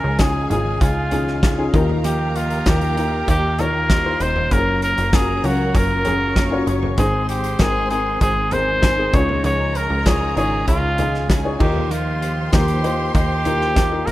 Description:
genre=piano-driven pop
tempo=97 BPM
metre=4/4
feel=straight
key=unclear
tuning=A4 = 441 Hz
part: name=warm trumpet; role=melody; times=0.0-14.1 s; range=F4 to Db5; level=-22 LUFS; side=equal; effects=none
part: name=warm studio violin section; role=second line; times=0.0-14.1 s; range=Ab4 to Db6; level=-32 LUFS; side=equal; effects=none
part: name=dark upright piano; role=accompaniment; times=0.0-14.1 s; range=Ab2 to F5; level=-25 LUFS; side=left 4 dB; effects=none
part: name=warm symphonic string section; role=sustained chords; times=0.0-14.1 s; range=Db3 to F5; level=-32 LUFS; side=right 1 dB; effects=none
part: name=direct-recorded clean electric guitar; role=riff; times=0.0-14.1 s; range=Ab2 to Eb5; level=-29 LUFS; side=right 4 dB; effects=none
part: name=plucky analog bass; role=bass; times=0.0-14.1 s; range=Eb1 to Eb2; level=-23 LUFS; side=equal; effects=none
part: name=loose indie drum kit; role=drums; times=0.2-14.1 s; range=crash cymbal, hi-hat, kick drum, snare drum, toms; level=-20 LUFS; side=equal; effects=none
room=light reverb, small room ambience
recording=rough home demo mix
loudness=-16 LUFS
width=side -16 dB against mid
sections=0.0-14.1 A section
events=none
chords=0.0 Dbadd9; 1.7 Ebadd9; 4.5 Gbmaj7; 7.0 Ab; 9.1 Dbadd9; 11.6 Ebadd9

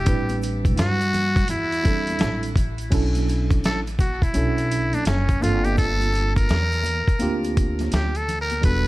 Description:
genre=hip hop, jazz-hop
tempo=84 BPM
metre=4/4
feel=swing 64% on 16ths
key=unclear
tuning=A4 = 439 Hz
part: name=trumpet with metal mute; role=melody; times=0.0-8.9 s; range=C#4 to B4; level=-26 LUFS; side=equal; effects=tape echo
part: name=tine electric piano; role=accompaniment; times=0.0-8.9 s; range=F#3 to B4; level=-27 LUFS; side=right 3 dB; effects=medium stereo tremolo
part: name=upright bass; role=bass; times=0.0-8.9 s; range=E1 to G2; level=-24 LUFS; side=equal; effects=none
part: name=dusty soul sampler-style drum kit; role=drums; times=0.1-8.8 s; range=crash cymbal, hi-hat, kick drum, snare drum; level=-23 LUFS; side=equal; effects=none
part: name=tube shaker and congas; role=percussion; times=0.1-8.8 s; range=none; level=-38 LUFS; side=left 4 dB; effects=none
room=little or no reverb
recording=vinyl crackle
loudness=-19 LUFS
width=side -18 dB against mid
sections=0.0-2.9 A section; 2.9-8.9 B section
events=muted trumpet solo 2.9-8.9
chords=0.1 Am11; 2.9 Bm11; 5.4 Gm11

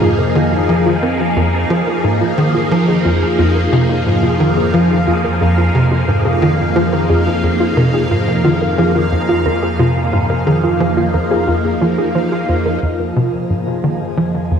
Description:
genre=ambient, sequencer-driven space music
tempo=89 BPM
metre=4/4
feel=straight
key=F minor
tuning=A4 = 438 Hz
part: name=phased string machine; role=sustained chords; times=0.0-14.6 s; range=F3 to Ab4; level=-17 LUFS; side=equal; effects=ensemble chorus, phaser, shimmer reverb
part: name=warbly dusty pluck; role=arpeggios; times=0.0-12.8 s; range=F4 to C5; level=-20 LUFS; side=equal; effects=chorus, auto-pan, tape echo, shimmer reverb
part: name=tight sequencer bass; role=riff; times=0.0-14.6 s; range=F2 to C4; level=-16 LUFS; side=equal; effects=analog chorus, tape echo
part: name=analog drone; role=bass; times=0.0-14.6 s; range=F2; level=-22 LUFS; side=equal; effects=chorus
part: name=bubbling stepped-filter texture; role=texture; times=0.0-14.6 s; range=F5 to Ab5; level=-26 LUFS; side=equal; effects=chorus, built-in reverb, shimmer reverb
room=wet echo chamber reverb, RT60 2.4 s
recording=echo-heavy mix, cassette tape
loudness=-12 LUFS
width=side -7 dB against mid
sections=0.0-12.8 A section; 12.8-14.6 A section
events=fade-in on synth texture 0.0-12.8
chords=0.0 Fm

